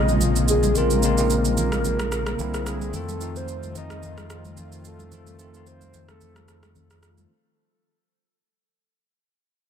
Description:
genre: amapiano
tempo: 110 BPM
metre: 4/4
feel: swing 55% on 16ths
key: unclear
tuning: A4 = 440 Hz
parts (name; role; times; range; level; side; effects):
- soft octave-layered synth lead; melody; 0.0-6.7 s; Ab4 to Eb5; -27 LUFS; left 1 dB; chorus, phaser, digital delay
- tine electric piano; accompaniment; 0.0-7.3 s; C3 to Ab4; -27 LUFS; equal; medium stereo tremolo
- warm analog pad; sustained chords; 0.0-7.3 s; Bb2 to F4; -31 LUFS; left 2 dB; chorus
- round analog bass; bass; 0.0-7.3 s; Bb1 to F2; -27 LUFS; equal; none
- electronic shaker and rim click; drums; 0.1-7.3 s; none; -31 LUFS; right 3 dB; overdrive
- congas; percussion; 0.1-7.3 s; none; -33 LUFS; right 3 dB; none
room: light reverb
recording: dense, heavily limited modern master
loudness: -20 LUFS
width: side -8 dB against mid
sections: 0.0-7.3 A section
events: fade-out 0.0-7.3; break 6.2-7.3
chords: 0.0 Bbm7; 2.4 C9; 2.9 F7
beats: 0.21 | 0.76 1.30 1.85 2.39 | 2.94 3.48 4.03 4.57 | 5.12 5.66 6.21 6.75

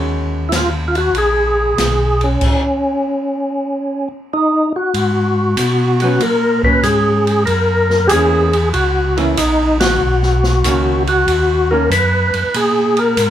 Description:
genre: soul jazz organ trio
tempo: 95 BPM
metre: 4/4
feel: swing 68% on 8ths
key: Eb minor, G# minor from 4.9 s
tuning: A4 = 440 Hz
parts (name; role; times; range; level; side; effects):
- vintage hollow-body jazz guitar; accompaniment; 0.0-1.7, 6.0-11.9 s; Eb3 to Gb4; -22 LUFS; right 2 dB; none
- mellow tonewheel organ; bass; 0.0-13.3 s; Bb1 to B2; -18 LUFS; equal; chorus vibrato, slow rotary speaker
- percussive tonewheel organ; melody; 0.5-13.3 s; Db4 to B4; -15 LUFS; left 1 dB; slow rotary speaker, overdrive, chorus vibrato
- open jazz drum kit; drums; 0.5-13.3 s; crash cymbal, hi-hat, kick drum, ride cymbal, snare drum; -22 LUFS; right 1 dB; none
room: light reverb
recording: band playing live in one room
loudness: -13 LUFS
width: side -11 dB against mid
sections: 0.0-4.9 A section; 4.9-13.3 B section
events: band accent 9.7-10.0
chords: 0.0 Ebm7; 2.4 N.C.; 4.9 G#m11; 7.5 F#7; 10.0 Bmaj9; 12.5 G#sus2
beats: 0.51 1.15 1.78 | 2.42 3.05 3.68 4.32 | 4.95 5.58 6.21 6.85 | 7.48 8.11 8.75 9.38 | 10.01 10.65 11.28 11.91 | 12.55 13.18

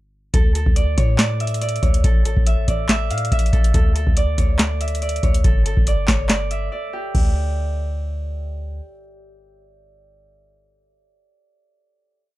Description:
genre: hip hop, trap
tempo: 141 BPM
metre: 4/4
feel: half-time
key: unclear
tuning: A4 = 441 Hz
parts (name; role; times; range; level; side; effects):
- Celtic harp; melody; 0.3-9.3 s; G4 to F5; -27 LUFS; equal; analog delay
- warm 808-style bass; bass; 0.3-8.8 s; G1 to A2; -21 LUFS; equal; none
- booming analog drum machine; drums; 0.3-7.3 s; crash cymbal, handclaps, hi-hat, kick drum, snare drum; -17 LUFS; equal; none
room: little or no reverb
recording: dry, gritty hardware recording, transformer saturation, faint mains hum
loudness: -17 LUFS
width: side -17 dB against mid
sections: 0.3-7.1 verse; 7.1-10.6 final note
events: break 6.7-7.1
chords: 0.3 D5; 2.0 Asus4; 3.7 Aadd11/D; 5.4 Gsus2; 7.1 N.C.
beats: | 0.34 0.76 1.19 1.61 | 2.04 2.47 2.89 3.32 | 3.74 4.17 4.59 5.02 | 5.45 5.87 6.30 6.72 | 7.15 7.57 8.00 8.42 | 8.85 9.28

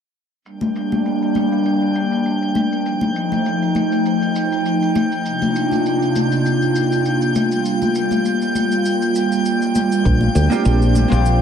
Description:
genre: sunset chillout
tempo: 100 BPM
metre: 4/4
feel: swing 54% on 16ths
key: Bb major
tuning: A4 = 444 Hz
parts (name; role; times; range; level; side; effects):
- airy breathy pad; sustained chords; 0.5-11.4 s; C3 to F4; -18 LUFS; equal; chorus
- shaker; drums; 0.5-11.4 s; none; -36 LUFS; right 1 dB; overdrive, low-pass filter on perc, low-pass filter on room
- drifting glass-harmonics texture; texture; 0.7-11.4 s; G5 to G6; -25 LUFS; equal; chorus, built-in reverb
- congas; percussion; 0.6-11.1 s; none; -23 LUFS; left 4 dB; none
- woody fretless electric bass; bass; 10.1-11.4 s; Bb1 to D2; -14 LUFS; equal; wide subtle chorus
- electronic kick drum; drums; 10.1-10.2 s; none; -21 LUFS; equal; overdrive
- vintage hollow-body jazz guitar; accompaniment; 10.5-11.4 s; Bb3 to G4; -19 LUFS; equal; auto-pan, analog delay
room: moderate plate reverb, RT60 2.7 s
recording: echo-heavy mix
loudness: -16 LUFS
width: side -8 dB against mid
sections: 0.5-11.4 A section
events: none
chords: 0.5 Bb6; 2.9 F9; 5.3 Cm11; 7.4 Gm7; 10.1 Bb6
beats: | 0.45 1.05 1.65 2.25 | 2.85 3.45 4.05 4.65 | 5.25 5.85 6.45 7.05 | 7.65 8.25 8.85 9.45 | 10.05 10.65 11.25

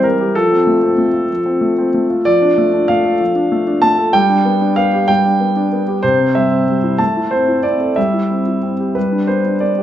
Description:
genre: classical-period piano sonatina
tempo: 63 BPM (dotted quarters)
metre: 6/8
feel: straight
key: C major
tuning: A4 = 440 Hz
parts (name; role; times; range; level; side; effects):
- warm grand piano; solo; 0.0-9.8 s; C3 to A5; -12 LUFS; equal; none
room: wet recital hall reverb, RT60 1.5 s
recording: dark, warm production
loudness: -12 LUFS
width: side -11 dB against mid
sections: 0.0-9.8 A section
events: none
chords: 0.4 F; 2.3 Dm/F; 4.1 G; 6.0 C; 7.0 Am; 8.0 C/G; 9.0 G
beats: | 0.36 1.30 | 2.26 3.21 | 4.14 5.09 | 6.04 7.00 | 7.97 8.96

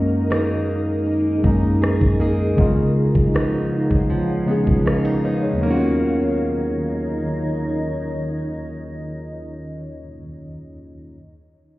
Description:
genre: contemporary R&B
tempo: 79 BPM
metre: 4/4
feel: straight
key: Eb minor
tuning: A4 = 440 Hz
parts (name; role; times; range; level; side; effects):
- tine electric piano; accompaniment; 0.0-11.2 s; Eb2 to F5; -22 LUFS; left 1 dB; phaser
- granular cloud pad; sustained chords; 0.0-9.4 s; Eb3 to F5; -26 LUFS; equal; built-in reverb, sidechain pumping
- picked plugged-in steel-string acoustic guitar; arpeggios; 0.0-10.2 s; Db3 to Ab4; -25 LUFS; right 2 dB; digital delay
- smooth R&B drum kit; drums; 0.3-5.0 s; kick drum, rim click; -20 LUFS; equal; none
room: moderate lush hall reverb, RT60 2.0 s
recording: heard muffled through a wall, stone room reverb, EQ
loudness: -17 LUFS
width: side -18 dB against mid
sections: 0.0-5.6 A section; 5.6-8.7 B section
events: none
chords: 0.0 Gb69; 2.6 Db9; 5.6 Ebm7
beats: 0.30 1.06 1.82 | 2.58 3.34 4.10 4.86 | 5.62 6.38 7.13 7.89

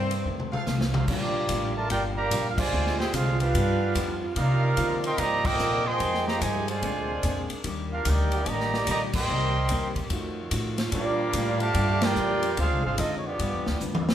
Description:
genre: jazz, big band swing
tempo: 146 BPM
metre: 4/4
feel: swing 65% on 8ths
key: Bb major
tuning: A4 = 440 Hz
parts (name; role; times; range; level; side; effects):
- warm saxophone section; melody; 0.0-0.7 s; C4; -32 LUFS; left 3 dB; none
- muted trombone section; second line; 0.0-13.8 s; G2 to G4; -34 LUFS; right 2 dB; none
- hollow-body jazz guitar; accompaniment; 0.0-14.1 s; F2 to G4; -35 LUFS; left 3 dB; none
- upright bass; bass; 0.0-14.1 s; G1 to D3; -28 LUFS; equal; none
- swinging big-band drum kit; drums; 0.1-14.1 s; crash cymbal, hi-hat, kick drum, ride cymbal, snare drum, toms; -31 LUFS; equal; none
- clear trumpet section; stabs; 0.5-1.1 s; F4 to F5; -35 LUFS; right 1 dB; none
- warm trumpet section; melody; 1.1-13.8 s; Bb3 to D6; -28 LUFS; right 1 dB; none
- warm saxophone section; sustained chords; 1.1-14.1 s; C3 to Ab4; -35 LUFS; right 3 dB; none
room: moderate large studio reverb, RT60 0.9 s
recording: band playing live in one room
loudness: -23 LUFS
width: side -10 dB against mid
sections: 0.0-1.1 A section; 1.1-14.1 B section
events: drum fill 0.3-1.1, 13.8-14.1; band accent 2.5, 5.4, 9.1, 12.0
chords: 0.3 F7; 1.1 Bb6; 2.7 Dm7b5; 3.5 G7b13; 4.4 Cm11; 6.0 Fm9; 6.8 Bb9; 7.6 Ebmaj7; 9.3 Cm7; 10.1 F7b9; 10.9 Bb6; 12.6 Dm7b5; 13.4 G7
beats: 0.26 0.68 | 1.09 1.50 1.91 2.32 | 2.73 3.14 3.55 3.96 | 4.37 4.78 5.18 5.59 | 6.00 6.41 6.82 7.23 | 7.64 8.05 8.46 8.88 | 9.29 9.70 10.11 10.52 | 10.93 11.34 11.75 12.16 | 12.58 12.99 13.40 13.81

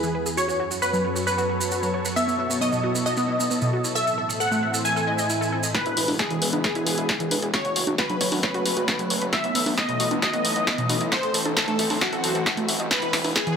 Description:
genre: uplifting trance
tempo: 134 BPM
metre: 4/4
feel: straight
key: E major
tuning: A4 = 440 Hz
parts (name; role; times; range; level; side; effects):
- supersaw stab; melody; 0.0-13.6 s; F#4 to G#5; -26 LUFS; left 1 dB; sidechain pumping, low-pass filter, ping-pong delay
- analog string pad; sustained chords; 0.0-13.6 s; E2 to E5; -30 LUFS; equal; ensemble chorus, sidechain pumping
- wide unison pluck; arpeggios; 0.0-13.5 s; B2 to E5; -28 LUFS; right 1 dB; sidechain pumping, dub echo
- maracas; percussion; 0.0-5.7 s; none; -30 LUFS; right 4 dB; none
- swell and riser; sound effects; 5.1-5.7, 13.5-13.6 s; none; -34 LUFS; right 3 dB; none
- electronic kick drum; drums; 5.7-13.4 s; none; -31 LUFS; equal; overdrive, high-pass filter on kick
- punchy analog drum machine; drums; 5.7-13.6 s; congas, hi-hat, snare drum; -24 LUFS; equal; high-pass filter on snare, sidechain pumping on hats, high-pass filter on hats, sidechain pumping on perc, high-pass filter on perc
- gritty driven synth bass; bass; 5.9-13.6 s; E1 to C#2; -34 LUFS; equal; sidechain pumping, high-pass filter
room: light reverb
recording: none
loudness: -21 LUFS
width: side -6 dB against mid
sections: 0.0-5.7 A section; 5.7-13.6 B section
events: filter sweep on supersaw synth 0.0-5.7; filter sweep on synth pluck 0.0-5.7; swell 5.1-5.7; build-up 5.7-13.6; drum fill 5.7-13.6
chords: 0.4 F#m; 2.2 B7sus4; 4.0 Am; 5.7 E; 7.5 F#m; 9.3 B7sus4; 11.1 Am; 12.9 E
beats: | 0.37 0.82 1.27 1.72 | 2.17 2.61 3.06 3.51 | 3.96 4.40 4.85 5.30 | 5.75 6.20 6.64 7.09 | 7.54 7.99 8.43 8.88 | 9.33 9.78 10.22 10.67 | 11.12 11.57 12.02 12.46 | 12.91 13.36

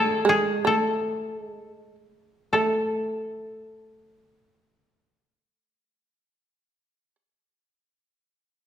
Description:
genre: japanese traditional, Japanese chamber music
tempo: free time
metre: none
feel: none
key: unclear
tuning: A4 = 440 Hz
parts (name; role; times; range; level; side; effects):
- koto; melody; 0.0-7.1 s; G#4 to D5; -24 LUFS; left 1 dB; none
- shamisen; second line; 0.0-7.2 s; G#3 to A3; -26 LUFS; right 3 dB; none
room: wet recital hall reverb, RT60 1.6 s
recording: recorded in a church or concert hall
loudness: -22 LUFS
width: side -9 dB against mid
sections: 0.0-2.5 A section; 2.5-6.9 B section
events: slowing down 0.0-2.5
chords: none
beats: free time

